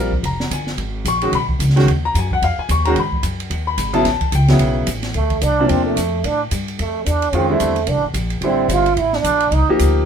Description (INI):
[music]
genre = modal jazz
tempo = 220 BPM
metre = 4/4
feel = swing 59% on 8ths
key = D minor from 5.1 s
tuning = A4 = 441 Hz
[part]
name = clear grand piano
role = accompaniment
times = 0.0-10.1 s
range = C3 to Db6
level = -18 LUFS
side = left 1 dB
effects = none
[part]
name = upright bass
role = bass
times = 0.0-10.1 s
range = F1 to A2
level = -19 LUFS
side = equal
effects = none
[part]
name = open jazz drum kit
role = drums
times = 0.1-9.9 s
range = hi-hat, kick drum, ride cymbal, snare drum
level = -25 LUFS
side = right 1 dB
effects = none
[part]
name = trombone with plunger mute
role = second line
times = 5.2-9.7 s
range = A3 to F4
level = -18 LUFS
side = right 5 dB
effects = none
[sound]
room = light reverb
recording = minimal, uncompressed stereo recording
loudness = -15 LUFS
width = side -7 dB against mid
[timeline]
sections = 0.0-5.1 A section; 5.1-10.1 A section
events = trombone solo 5.1-10.1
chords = 0.0 Fmadd9; 0.8 Abm11; 4.1 A7; 5.1 Dm9; 9.5 Cm9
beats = 0.24 0.51 | 0.78 1.05 1.33 1.60 | 1.87 2.15 2.42 2.69 | 2.96 3.24 3.51 3.78 | 4.06 4.33 4.60 4.88 | 5.15 5.42 5.70 5.97 | 6.24 6.51 6.79 7.06 | 7.33 7.61 7.88 8.15 | 8.43 8.70 8.97 9.25 | 9.52 9.79